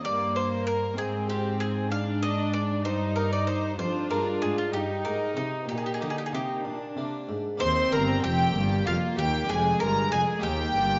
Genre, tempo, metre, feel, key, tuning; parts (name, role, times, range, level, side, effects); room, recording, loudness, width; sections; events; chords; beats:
classical, baroque-style concerto movement with solo episodes; 64 BPM (dotted quarters); 6/8; straight; Eb major; A4 = 440 Hz
bowl-back mandolin; melody; 0.0-11.0 s; Eb4 to F5; -33 LUFS; equal
warm studio violin section; melody; 0.0-11.0 s; Eb4 to C6; -35 LUFS; equal
rich symphonic violin section; second line; 0.0-11.0 s; Bb3 to C5; -35 LUFS; equal
harpsichord; accompaniment; 0.0-11.0 s; Eb2 to F4; -38 LUFS; equal
rich studio viola section; accompaniment; 0.0-11.0 s; Ab3 to Eb4; -36 LUFS; equal
warm chamber cello section; bass; 0.0-11.0 s; Eb2 to D3; -34 LUFS; equal
warm chamber double bass section; bass; 7.6-11.0 s; F1 to Eb2; -34 LUFS; equal
moderate recital hall reverb, RT60 1.5 s; vinyl crackle, nothing above 7.5 kHz; -27 LUFS; mono
0.0-7.6 A section; 7.6-11.0 B section
0.0 Gm; 1.0 Fm/Ab; 1.9 Bb7/Ab; 2.8 Eb/G; 3.8 Bb7/F; 4.7 Eb/G; 5.7 Eb/Bb; 6.6 Bb; 7.6 Eb; 9.5 Ddim/F; 10.4 Eb
| 0.04 0.97 | 1.91 2.85 | 3.79 4.73 | 5.69 6.65 | 7.61 8.55 | 9.49 10.43